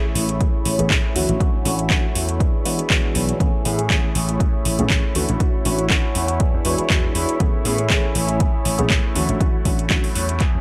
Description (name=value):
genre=filtered disco house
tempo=120 BPM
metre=4/4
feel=swing 53% on 16ths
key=A major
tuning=A4 = 439 Hz
part: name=funky polysynth comp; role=accompaniment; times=0.0-10.1 s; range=E3 to G#4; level=-29 LUFS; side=equal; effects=chorus, phaser, sidechain pumping, low-pass filter
part: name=clear studio violin section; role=sustained chords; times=0.0-10.6 s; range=E4 to C#5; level=-30 LUFS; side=equal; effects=sidechain pumping, low-pass filter
part: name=direct-recorded clean electric guitar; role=riff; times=0.0-10.6 s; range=E3 to G#4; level=-32 LUFS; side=equal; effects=phaser, sidechain pumping, low-pass filter
part: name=slap bass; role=bass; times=0.2-10.6 s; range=A1 to A2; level=-26 LUFS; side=equal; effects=sidechain pumping, low-pass filter
part: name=house drum kit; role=drums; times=0.2-10.5 s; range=handclaps, hi-hat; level=-26 LUFS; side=equal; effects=overdrive, sidechain pumping on hats
part: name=electronic kick drum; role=drums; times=0.4-10.5 s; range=none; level=-22 LUFS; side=equal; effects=none
room=light reverb, digital ambience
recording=dry, gritty hardware recording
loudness=-19 LUFS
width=mono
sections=0.0-10.6 A section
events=filter sweep 0.0-10.6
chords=0.0 Amaj7; 1.2 Dmaj7; 2.4 E7; 3.4 Amaj7; 5.2 Dmaj7; 6.4 E7; 7.4 Amaj7; 9.2 Dmaj7